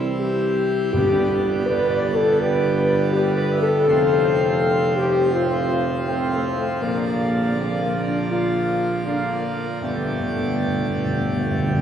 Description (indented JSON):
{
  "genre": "classical",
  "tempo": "81 BPM",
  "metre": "4/4",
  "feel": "straight",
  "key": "unclear",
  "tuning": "A4 = 439 Hz",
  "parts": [
    { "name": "dark trumpet section", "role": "melody", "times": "0.0-11.8 s", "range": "B4 to G5", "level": "-30 LUFS", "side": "equal", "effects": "none" },
    { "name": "dark French horn section", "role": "sustained chords", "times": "0.0-11.8 s", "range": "A3 to D5", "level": "-22 LUFS", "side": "left 2 dB", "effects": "none" },
    { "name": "pipe organ, full organ", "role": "sustained chords", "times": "0.0-11.8 s", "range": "D3 to D5", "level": "-28 LUFS", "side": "right 1 dB", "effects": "none" },
    { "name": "warm trombone section", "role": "sustained chords", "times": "0.0-11.8 s", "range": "A2 to C4", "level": "-28 LUFS", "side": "right 3 dB", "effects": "none" },
    { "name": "mellow tuba", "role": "bass", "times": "0.0-11.8 s", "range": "F1 to C2", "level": "-25 LUFS", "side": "right 2 dB", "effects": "none" },
    { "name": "timpani", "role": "percussion", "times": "0.9-2.0, 9.8-11.8 s", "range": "G2", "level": "-29 LUFS", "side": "left 1 dB", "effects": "none" }
  ],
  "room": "wet cathedral reverb, RT60 5.4 s",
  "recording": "recorded in a church or concert hall",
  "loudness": "-18 LUFS",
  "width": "side -9 dB against mid",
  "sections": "0.0-11.8 A section",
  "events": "timpani fill 9.8-11.8",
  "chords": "0.0 C; 0.9 G; 3.9 F; 6.8 Bb; 9.8 Gadd9",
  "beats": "0.20 | 0.94 1.68 2.41 3.14 | 3.87 4.60 5.33 6.07 | 6.81 7.56 8.30 9.05 | 9.82 10.59 11.36"
}